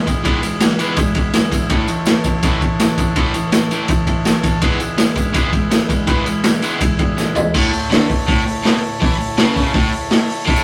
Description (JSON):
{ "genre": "garage rock duo or trio", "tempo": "164 BPM", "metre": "4/4", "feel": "straight", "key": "A major", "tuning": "A4 = 441 Hz", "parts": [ { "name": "combo organ", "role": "sustained chords", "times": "0.0-10.6 s", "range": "E4 to B5", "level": "-28 LUFS", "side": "equal", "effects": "spring reverb" }, { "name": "overdriven electric guitar", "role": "riff", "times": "0.0-10.6 s", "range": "A2 to B3", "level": "-22 LUFS", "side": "equal", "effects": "none" }, { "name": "raw garage drum kit", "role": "drums", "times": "0.1-10.6 s", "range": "crash cymbal, hi-hat, kick drum, ride cymbal, snare drum, toms", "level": "-18 LUFS", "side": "equal", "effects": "none" }, { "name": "tambourine", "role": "percussion", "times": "0.1-7.4, 10.6 s", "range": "none", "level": "-36 LUFS", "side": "equal", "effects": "none" } ], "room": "light reverb", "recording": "rough rehearsal-room recording, tube saturation", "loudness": "-16 LUFS", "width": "mono", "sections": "0.0-7.5 A section; 7.5-10.6 B section", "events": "transistor combo organ fill 1.0-1.7, 3.9-4.6; drum fill 7.2-7.5", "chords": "0.0 E; 1.7 A; 4.6 E; 7.5 A" }